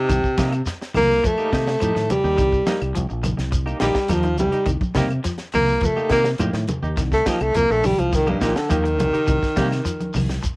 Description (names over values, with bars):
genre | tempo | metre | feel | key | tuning
afrobeat | 104 BPM | 4/4 | straight | C dorian | A4 = 440 Hz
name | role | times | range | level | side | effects
warm baritone saxophone | melody | 0.0-10.4 s | G2 to Bb3 | -20 LUFS | equal | cassette tape
semi-hollow electric guitar | stabs | 0.0-10.5 s | Bb3 to G4 | -29 LUFS | right 2 dB | tremolo, cassette tape
electric guitar at the edge of break-up | arpeggios | 0.1-10.5 s | Eb3 to G3 | -31 LUFS | left 2 dB | lush chorus, cassette tape
fingered electric bass | bass | 0.1-10.4 s | Bb1 to C3 | -24 LUFS | equal | none
tight funk drum kit | drums | 0.1-10.6 s | hi-hat, kick drum, snare drum | -27 LUFS | equal | none
claves | percussion | 0.1-10.3 s | none | -39 LUFS | left 3 dB | none
shekere | percussion | 0.1-10.6 s | none | -30 LUFS | equal | none
congas | percussion | 0.4-10.3 s | none | -26 LUFS | equal | none
room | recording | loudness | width
light reverb | home recording on cassette | -18 LUFS | side -25 dB against mid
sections
0.0-10.6 A section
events
baritone saxophone solo 0.0-10.6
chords
0.0 Cm7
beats
| 0.09 0.66 1.23 1.81 | 2.38 2.95 3.53 4.10 | 4.68 5.25 5.83 6.40 | 6.98 7.55 8.13 8.71 | 9.28 9.86 10.44